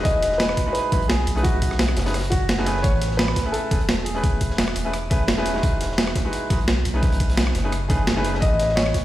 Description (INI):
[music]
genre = liquid drum and bass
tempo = 172 BPM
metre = 4/4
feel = swing 53% on 16ths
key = A lydian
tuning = A4 = 440 Hz
[part]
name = warm grand piano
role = melody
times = 0.0-4.5, 7.9-9.0 s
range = F#4 to D#5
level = -26 LUFS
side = equal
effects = dub echo
[part]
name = clear grand piano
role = accompaniment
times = 0.0-9.0 s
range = G#3 to B4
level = -27 LUFS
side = equal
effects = dub echo
[part]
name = warm sub bass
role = bass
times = 0.0-8.9 s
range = E1 to B1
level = -24 LUFS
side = equal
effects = none
[part]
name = breakbeat sampler-style drum kit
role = drums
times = 0.1-9.0 s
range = hi-hat, rim click, snare drum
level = -24 LUFS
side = equal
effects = studio reverb
[part]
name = crunchy breakbeat drum kit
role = drums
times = 0.1-9.0 s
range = hi-hat, snare drum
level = -34 LUFS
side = equal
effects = high-pass filter on hats, studio reverb, high-pass filter on snare, high-pass filter on room
[part]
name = electronic kick drum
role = drums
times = 0.1-9.0 s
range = none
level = -22 LUFS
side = equal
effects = overdrive, studio reverb
[sound]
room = light reverb, studio ambience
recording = played on a big sound system in a bare room, stone room reverb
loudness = -19 LUFS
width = side -14 dB against mid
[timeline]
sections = 0.0-9.0 A section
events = none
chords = 0.1 Emaj9; 1.3 B13; 2.8 Amaj9; 5.6 Emaj9; 6.9 B13; 8.4 Amaj9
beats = | 0.05 0.40 0.75 1.10 | 1.45 1.79 2.14 2.49 | 2.84 3.19 3.54 3.89 | 4.24 4.59 4.93 5.28 | 5.63 5.98 6.33 6.68 | 7.03 7.38 7.73 8.07 | 8.42 8.77